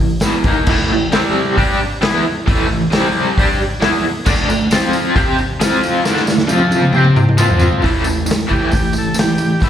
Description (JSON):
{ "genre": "garage rock duo or trio", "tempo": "134 BPM", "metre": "4/4", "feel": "straight", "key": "unclear", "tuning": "A4 = 440 Hz", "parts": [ { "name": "raw garage guitar", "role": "riff", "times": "0.0-9.7 s", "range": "E2 to C5", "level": "-15 LUFS", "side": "equal", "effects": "overdrive, tremolo, slapback echo" }, { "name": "vintage drum kit", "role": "drums", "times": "0.2-9.7 s", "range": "crash cymbal, hi-hat, kick drum, snare drum, toms", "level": "-16 LUFS", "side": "equal", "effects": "none" }, { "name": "tambourine", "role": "percussion", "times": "0.2-0.3, 4.3-9.7 s", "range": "none", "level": "-29 LUFS", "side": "right 2 dB", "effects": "none" }, { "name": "combo organ", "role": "melody", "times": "8.5-9.7 s", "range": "E4 to A4", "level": "-21 LUFS", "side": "right 1 dB", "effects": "slapback echo, tape echo" } ], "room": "light reverb", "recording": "live gig heard through the venue's PA, recital hall reverb", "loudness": "-12 LUFS", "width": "side -10 dB against mid", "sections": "0.7-7.8 A section; 7.8-9.7 B section", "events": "drum fill 6.0-7.8; transistor combo organ solo 7.8-9.7", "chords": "0.2 E5; 0.4 D#5; 0.7 A5; 1.1 C5; 1.6 A5; 2.9 C5; 3.4 N.C.; 4.3 D5; 4.7 F5; 5.1 D7sus4 (rootless); 5.6 F5; 6.0 D5; 6.5 F5; 6.9 D7sus4 (rootless); 7.4 F5; 7.8 A5" }